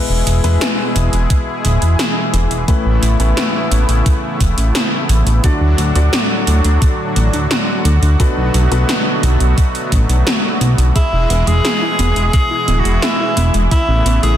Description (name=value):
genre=synthwave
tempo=87 BPM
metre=4/4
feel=straight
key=A major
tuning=A4 = 444 Hz
part: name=brassy analog pad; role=sustained chords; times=0.0-14.4 s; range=A2 to G#4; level=-20 LUFS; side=equal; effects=chorus, sidechain pumping
part: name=clear concert grand piano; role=stabs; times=0.0-10.9 s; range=A2 to D5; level=-23 LUFS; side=left 3 dB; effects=tape echo
part: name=chorused synth bass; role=bass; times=0.1-14.4 s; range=D1 to D2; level=-13 LUFS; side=equal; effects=none
part: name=80s electronic pad drums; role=drums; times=0.3-14.4 s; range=hi-hat, snare drum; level=-20 LUFS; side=equal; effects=none
part: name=electronic kick drum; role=drums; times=1.3-13.9 s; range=none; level=-14 LUFS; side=equal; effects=none
part: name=bright tenor saxophone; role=melody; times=11.0-14.4 s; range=E4 to G#4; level=-18 LUFS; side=equal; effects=digital delay
part: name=analog pluck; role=arpeggios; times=11.0-14.4 s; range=G#3 to G#4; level=-24 LUFS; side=right 2 dB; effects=chorus, tape echo
room=light reverb, digital ambience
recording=dense, heavily limited modern master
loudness=-12 LUFS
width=side -11 dB against mid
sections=0.0-14.4 A section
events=none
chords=0.0 E; 2.7 Aadd9; 5.4 D; 8.2 Bm7; 11.0 E; 13.7 Aadd9